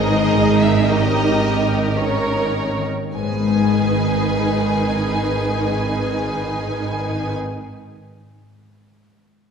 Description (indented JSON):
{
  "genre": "classical, slow romantic movement for symphony orchestra",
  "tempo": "48-64 BPM",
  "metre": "3/4",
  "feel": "rubato",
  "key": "G# minor",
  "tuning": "A4 = 441 Hz",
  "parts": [
    { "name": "warm symphonic violin section", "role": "melody", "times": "0.0-7.3 s", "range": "D#5 to G#5", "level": "-26 LUFS", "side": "left 2 dB", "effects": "none" },
    { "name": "warm symphonic violin section", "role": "second line", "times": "0.0-7.3 s", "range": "G4 to C#5", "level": "-24 LUFS", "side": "left 1 dB", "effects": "none" },
    { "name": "warm symphonic viola section", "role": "accompaniment", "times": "0.0-7.3 s", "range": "D#3 to D#4", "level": "-24 LUFS", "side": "right 3 dB", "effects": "none" },
    { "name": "concert harp", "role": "arpeggios", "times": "0.0-7.8 s", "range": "G#2 to D#5", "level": "-23 LUFS", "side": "left 4 dB", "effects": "none" },
    { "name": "rich symphonic cello section", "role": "bass", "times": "0.0-7.3 s", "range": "G#2", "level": "-24 LUFS", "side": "right 3 dB", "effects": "none" },
    { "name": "rich symphonic double bass section", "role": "bass", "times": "0.0-7.3 s", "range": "G#1", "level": "-26 LUFS", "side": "right 3 dB", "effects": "none" }
  ],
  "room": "wet concert hall reverb, RT60 1.8 s",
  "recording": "minimal, uncompressed stereo recording, lossy compression artefacts",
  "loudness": "-17 LUFS",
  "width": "side -6 dB against mid",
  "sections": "0.0-3.2 A section; 3.2-6.6 B section",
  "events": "slowing down 0.0-3.2",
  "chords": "0.0 D#7/G#; 3.2 G#m"
}